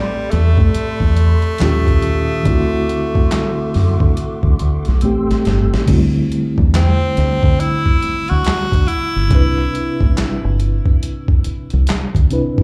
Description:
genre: R&B, neo-soul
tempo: 70 BPM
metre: 4/4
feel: swing 62% on 16ths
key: unclear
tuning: A4 = 440 Hz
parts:
  - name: edgy tenor saxophone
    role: melody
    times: 0.0-10.6 s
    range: G3 to F#4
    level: -24 LUFS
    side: equal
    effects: slapback echo, tape echo
  - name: mellow reed electric piano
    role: accompaniment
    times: 0.0-12.6 s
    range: A2 to B4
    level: -23 LUFS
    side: equal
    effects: fast tremolo, slapback echo
  - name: mellow tonewheel organ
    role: sustained chords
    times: 0.0-5.9 s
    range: G4 to E6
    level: -34 LUFS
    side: equal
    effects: fast rotary speaker, chorus vibrato
  - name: deep dub fingered electric bass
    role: bass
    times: 0.0-12.6 s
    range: E1 to D3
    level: -18 LUFS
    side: equal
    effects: none
  - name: boom bap sampler-style drum kit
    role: drums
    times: 0.3-12.6 s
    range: crash cymbal, handclaps, hi-hat, kick drum, snare drum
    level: -19 LUFS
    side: equal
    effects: none
room: digital ambience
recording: live gig heard through the venue's PA, club reverb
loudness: -16 LUFS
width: mono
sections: 0.0-5.9 A section; 5.9-12.6 B section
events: drum fill 5.0-5.9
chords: 0.0 Am9; 1.6 D#9; 2.4 D7; 5.0 Am7; 5.9 D9sus4; 9.3 Cmaj9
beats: 0.73 1.59 | 2.45 3.31 4.16 5.02 | 5.88 6.73 7.59 8.45 | 9.31 10.16 11.02 11.88

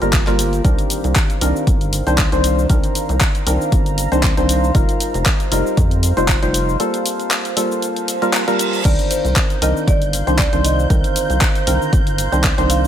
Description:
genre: deep house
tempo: 117 BPM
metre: 4/4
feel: swing 55% on 16ths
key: C dorian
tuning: A4 = 438 Hz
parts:
  - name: percussive organ stab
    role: stabs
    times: 0.0-12.9 s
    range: D3 to C5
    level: -20 LUFS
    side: equal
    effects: wide subtle chorus, sidechain pumping, dub echo
  - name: rubbery square bass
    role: bass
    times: 0.0-12.9 s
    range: F1 to F2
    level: -19 LUFS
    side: equal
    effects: sidechain pumping
  - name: deep house drum kit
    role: drums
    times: 0.0-12.9 s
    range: crash cymbal, handclaps, hi-hat, shaker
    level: -22 LUFS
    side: left 1 dB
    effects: none
  - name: deep dark ambient pad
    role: texture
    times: 0.0-12.9 s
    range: G4 to Bb5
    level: -26 LUFS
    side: right 1 dB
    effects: chorus, built-in reverb, sidechain pumping
  - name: electronic kick drum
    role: drums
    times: 0.1-12.6 s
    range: none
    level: -17 LUFS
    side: equal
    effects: none
  - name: reverse cymbal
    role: sound effects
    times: 8.1-8.8 s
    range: none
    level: -27 LUFS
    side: right 6 dB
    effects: none
  - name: warm studio violin section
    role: texture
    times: 8.8-12.9 s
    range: G6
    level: -30 LUFS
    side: right 2 dB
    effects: none
  - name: marimba with medium hard mallets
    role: melody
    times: 8.9-12.9 s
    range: C5 to F5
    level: -26 LUFS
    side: right 2 dB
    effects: dub echo
room: light reverb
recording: none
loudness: -14 LUFS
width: side -10 dB against mid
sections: 0.0-12.9 A section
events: break 6.8-8.8; reverse cymbal 8.1-8.8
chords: 0.0 Gm7; 0.6 Cm9; 4.7 F9sus4; 6.8 Gm9; 8.8 Cm9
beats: 0.13 | 0.65 1.16 1.67 2.18 | 2.70 3.21 3.72 4.24 | 4.75 5.26 5.77 6.29 | 6.80 7.31 7.83 8.34 | 8.85 9.36 9.88 10.39 | 10.90 11.41 11.93 12.44

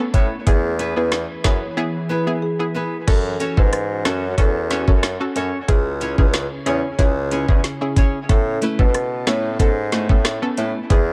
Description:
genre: dancehall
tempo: 92 BPM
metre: 4/4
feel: straight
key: unclear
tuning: A4 = 440 Hz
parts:
  - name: analog pluck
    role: accompaniment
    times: 0.0-11.1 s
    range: B3 to A4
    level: -29 LUFS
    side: equal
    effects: chorus
  - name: glassy FM pad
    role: sustained chords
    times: 0.0-11.1 s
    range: C#3 to B4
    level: -33 LUFS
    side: equal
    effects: ensemble chorus, built-in reverb, sidechain pumping
  - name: nylon-string guitar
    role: arpeggios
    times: 0.1-10.8 s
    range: A3 to C#5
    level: -30 LUFS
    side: equal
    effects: dub echo
  - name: clear bassoon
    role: bass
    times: 0.1-11.1 s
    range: C#2 to B2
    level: -26 LUFS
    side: equal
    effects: none
  - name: island pop drum kit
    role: drums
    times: 0.1-11.1 s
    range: crash cymbal, hi-hat, kick drum, rim click, snare drum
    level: -20 LUFS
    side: equal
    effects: vintage 12-bit sampler grit
  - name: marimba with medium mallets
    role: melody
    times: 0.5-11.0 s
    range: G#4 to C#5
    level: -29 LUFS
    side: equal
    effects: dub echo
room: light reverb, small room ambience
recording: echo-heavy mix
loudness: -19 LUFS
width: mono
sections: 0.0-3.1 A section; 3.1-11.1 B section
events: none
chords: 0.5 E; 3.1 F#m; 5.7 C#m; 8.3 Aadd9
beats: | 0.47 1.12 1.77 2.42 | 3.08 3.73 4.38 5.03 | 5.68 6.34 6.99 7.64 | 8.29 8.95 9.60 10.25 | 10.90

